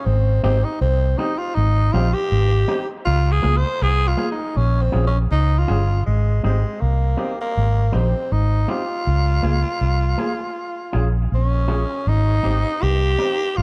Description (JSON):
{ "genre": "roots reggae", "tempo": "80 BPM", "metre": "4/4", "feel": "swing 58% on 16ths", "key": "Ab major", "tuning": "A4 = 440 Hz", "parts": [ { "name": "raspy tenor saxophone", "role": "melody", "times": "0.0-13.6 s", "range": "Ab3 to C5", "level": "-26 LUFS", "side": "equal", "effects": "dub echo" }, { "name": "vintage muted fingered electric bass", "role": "bass", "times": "0.1-13.6 s", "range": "G1 to Db2", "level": "-20 LUFS", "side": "equal", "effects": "none" }, { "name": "electric guitar with an envelope filter", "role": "accompaniment", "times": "0.4-13.3 s", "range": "Bb3 to Ab4", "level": "-31 LUFS", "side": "equal", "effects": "spring reverb, dub echo" } ], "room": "light reverb", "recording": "dark, warm production", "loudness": "-20 LUFS", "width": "mono", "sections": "0.0-6.0 A section; 6.0-13.6 B section", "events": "tenor saxophone solo 0.0-6.0", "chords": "0.0 Abmaj7; 3.0 Db6; 4.5 Bbm7; 6.0 Abmaj7; 9.1 Db6; 10.6 Bbm7; 12.1 Abmaj7" }